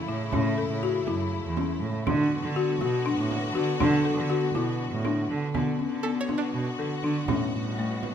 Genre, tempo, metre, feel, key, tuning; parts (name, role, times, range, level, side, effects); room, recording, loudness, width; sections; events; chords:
contemporary instrumental, chamber music in an uneven meter; 241 BPM (eighths); 7/8; straight; A4 = 442 Hz
rich symphonic string section; sustained chords; 0.0-8.1 s; B2 to F#4; -33 LUFS; left 2 dB
string-like resonator pluck; texture; 0.0-0.8, 6.0-7.6 s; D4 to E5; -34 LUFS; right 6 dB; chorus
folk marimba with medium mallets; arpeggios; 0.1-8.1 s; A3 to A4; -28 LUFS; left 5 dB
warm cello; bass; 0.1-8.1 s; E2 to D3; -29 LUFS; right 4 dB
frame drum; percussion; 0.1-8.1 s; -33 LUFS; right 9 dB
moderate scoring stage reverb, RT60 1.9 s; close, detailed microphones; -24 LUFS; side -8 dB against mid
0.0-5.5 A section; 5.5-8.1 B section
0.0 A; 2.1 D6; 7.3 A13